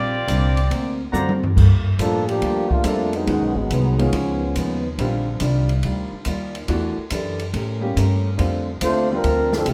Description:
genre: jazz, big band swing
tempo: 140 BPM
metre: 4/4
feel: swing 68% on 8ths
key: G minor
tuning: A4 = 440 Hz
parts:
  - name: clear saxophone section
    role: melody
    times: 0.0-1.0 s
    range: C4 to D5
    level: -27 LUFS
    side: equal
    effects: none
  - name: fingerpicked steel-string acoustic guitar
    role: accompaniment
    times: 0.0-9.7 s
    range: Ab2 to Bb4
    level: -30 LUFS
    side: equal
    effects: none
  - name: upright bass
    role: bass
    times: 0.0-9.7 s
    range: Ab1 to A2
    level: -25 LUFS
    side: equal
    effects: none
  - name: open jazz drum kit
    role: drums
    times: 0.3-9.7 s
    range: crash cymbal, hi-hat, kick drum, ride cymbal, snare drum, toms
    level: -25 LUFS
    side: equal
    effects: none
  - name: bright upright piano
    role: accompaniment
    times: 1.1-9.2 s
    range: D3 to A4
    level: -29 LUFS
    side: equal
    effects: none
  - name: warm trumpet section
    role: stabs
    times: 1.1-1.3 s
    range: C5 to Bb5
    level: -29 LUFS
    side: equal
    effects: none
  - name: warm trombone section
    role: second line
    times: 2.0-4.9, 8.8-9.7 s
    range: Eb3 to C5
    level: -23 LUFS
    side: equal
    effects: none
room: light reverb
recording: none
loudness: -21 LUFS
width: mono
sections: 0.0-1.6 A section; 1.6-9.7 B section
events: drum fill 1.1-1.6; trombone section solo 1.6-9.7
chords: 0.0 Bb69; 0.7 D7b13; 1.6 Gm9; 3.3 Abm7; 4.1 C#9; 5.0 Ebmaj9; 6.7 Em11; 7.5 A7b9; 8.4 Dm7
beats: 0.28 0.71 1.14 | 1.56 1.99 2.42 2.85 | 3.27 3.70 4.13 4.55 | 4.98 5.41 5.83 6.26 | 6.69 7.11 7.54 7.97 | 8.39 8.82 9.25 9.68

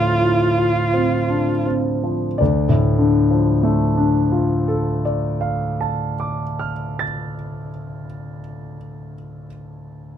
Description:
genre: classical, impressionist duo for viola and grand piano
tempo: 40-46 BPM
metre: 4/4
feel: rubato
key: D minor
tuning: A4 = 440 Hz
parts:
  - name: warm viola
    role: melody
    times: 0.0-1.7 s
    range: F4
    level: -20 LUFS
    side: right 1 dB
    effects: none
  - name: warm concert grand piano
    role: accompaniment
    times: 0.0-10.2 s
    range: D2 to A6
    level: -19 LUFS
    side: left 1 dB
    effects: none
room: light reverb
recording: none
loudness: -17 LUFS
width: side -9 dB against mid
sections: 0.0-2.4 A section; 2.4-8.0 B section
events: slowing down 0.0-2.4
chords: 0.0 Dm7; 2.4 Dm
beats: 0.93 | 2.38 3.82 5.24 6.61

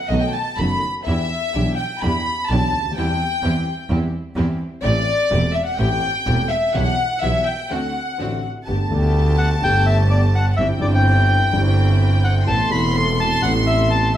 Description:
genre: tango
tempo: 126 BPM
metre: 4/4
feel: rubato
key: E minor, G major from 8.7 s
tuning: A4 = 440 Hz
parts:
  - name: warm studio violin section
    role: second line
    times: 0.0-14.2 s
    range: D5 to C6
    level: -23 LUFS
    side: left 2 dB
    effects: none
  - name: dark concert grand piano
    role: accompaniment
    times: 0.1-14.2 s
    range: E1 to G4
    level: -23 LUFS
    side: left 1 dB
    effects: none
  - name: clear studio string section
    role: stabs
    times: 0.1-14.2 s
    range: A3 to A4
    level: -30 LUFS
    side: right 2 dB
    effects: none
  - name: clear double bass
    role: bass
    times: 0.1-14.2 s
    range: E1 to E2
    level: -20 LUFS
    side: right 1 dB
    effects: none
  - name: bandoneon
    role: melody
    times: 9.4-14.2 s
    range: D5 to C6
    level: -20 LUFS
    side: left 1 dB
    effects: none
room: moderate large studio reverb, RT60 1.2 s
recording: none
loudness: -16 LUFS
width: side -11 dB against mid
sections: 0.0-8.7 A section; 8.7-14.2 B section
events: violin section solo 0.0-8.7; break 7.7-8.7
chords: 0.0 B7; 1.1 Em7; 3.0 C/E; 4.8 Am7; 6.7 Em/B; 7.7 D7; 8.7 Gadd9; 10.6 Cadd9/G; 12.5 Amadd9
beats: 0.10 0.58 | 1.06 1.54 2.02 2.49 | 2.96 3.43 3.90 4.37 | 4.84 5.31 5.78 6.26 | 6.74 7.22 7.70 8.19 | 8.67 9.15 9.63 10.11 | 10.58 11.05 11.53 12.00 | 12.47 12.95 13.42 13.90

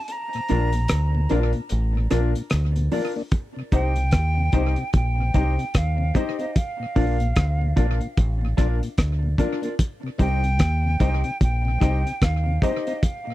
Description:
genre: roots reggae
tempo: 74 BPM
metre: 4/4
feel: swing 61% on 16ths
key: C dorian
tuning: A4 = 440 Hz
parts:
  - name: hollow concert flute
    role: melody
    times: 0.0-13.3 s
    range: Eb5 to Bb5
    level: -30 LUFS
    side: right 1 dB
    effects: tape echo
  - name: cloth-damped thuddy drum kit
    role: drums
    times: 0.1-13.3 s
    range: hi-hat, kick drum, rim click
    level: -22 LUFS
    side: equal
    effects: none
  - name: mellow tonewheel organ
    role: accompaniment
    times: 0.3-13.3 s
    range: Bb2 to Eb4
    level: -30 LUFS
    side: left 3 dB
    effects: slow rotary speaker
  - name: mellow electric guitar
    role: accompaniment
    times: 0.5-13.0 s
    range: D4 to Eb5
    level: -31 LUFS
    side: right 2 dB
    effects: tape echo
  - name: warm baby grand piano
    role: stabs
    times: 0.5-12.8 s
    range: D4 to C5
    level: -29 LUFS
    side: left 8 dB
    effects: none
  - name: deep dub fingered electric bass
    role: bass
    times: 0.5-12.6 s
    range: A1 to Eb2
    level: -22 LUFS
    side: equal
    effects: none
room: little or no reverb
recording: dry, close 1970s-style studio recording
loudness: -20 LUFS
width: side -16 dB against mid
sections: 0.0-3.3 A section; 3.3-13.3 B section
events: kick muted 0.1-3.3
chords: 0.1 Bb; 3.3 Cm; 6.6 Bb; 9.8 Cm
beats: | 0.09 0.90 1.70 2.51 | 3.32 4.13 4.94 5.75 | 6.55 7.36 8.17 8.98 | 9.79 10.60 11.41 12.22 | 13.03

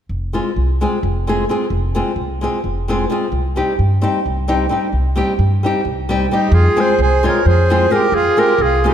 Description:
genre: balkan folk, Balkan wedding band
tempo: 261 BPM (eighths)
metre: 7/8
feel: straight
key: F minor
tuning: A4 = 440 Hz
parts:
  - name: upright bass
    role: bass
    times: 0.1-8.9 s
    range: F1 to G2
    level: -17 LUFS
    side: equal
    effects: none
  - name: nylon-string guitar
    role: accompaniment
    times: 0.3-8.9 s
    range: G3 to Ab4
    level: -18 LUFS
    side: left 1 dB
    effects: none
  - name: mellow clarinet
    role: melody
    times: 6.3-8.9 s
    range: G4 to Db5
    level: -16 LUFS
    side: equal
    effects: none
  - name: accordion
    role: second line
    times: 6.3-8.9 s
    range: Eb4 to Bb4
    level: -19 LUFS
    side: right 6 dB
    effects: none
room: moderate concert hall reverb, RT60 1.8 s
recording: none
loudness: -14 LUFS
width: side -9 dB against mid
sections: 0.1-6.5 A section; 6.5-8.9 B section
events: none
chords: 0.1 Fm; 3.3 Cm; 6.5 Fm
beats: | 0.09 0.32 0.55 0.78 1.01 1.24 1.47 | 1.70 1.93 2.16 2.39 2.62 2.85 3.08 | 3.31 3.54 3.77 4.00 4.23 4.46 4.69 | 4.92 5.15 5.38 5.61 5.84 6.07 6.29 | 6.52 6.75 6.98 7.21 7.43 7.66 7.89 | 8.12 8.35 8.57 8.80

